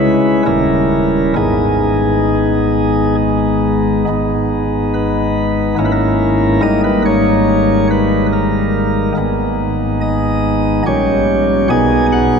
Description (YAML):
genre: classical, chorale-style piece for pipe organ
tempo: 65-72 BPM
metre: 3/4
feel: rubato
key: G# minor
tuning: A4 = 440 Hz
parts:
  - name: chamber organ, sparkling flutes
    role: solo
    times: 0.0-12.4 s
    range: D#1 to G#5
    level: -12 LUFS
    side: equal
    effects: none
room: wet cathedral reverb, RT60 5.4 s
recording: minimal, uncompressed stereo recording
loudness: -12 LUFS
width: side -6 dB against mid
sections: 0.0-4.1 A section; 4.1-12.4 A section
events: none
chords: 0.5 D#7b9; 1.4 G#m; 5.8 A#m7b5/G#; 6.6 D#/G#; 9.2 G#m; 10.9 Gdim/Bb; 11.7 G#m/B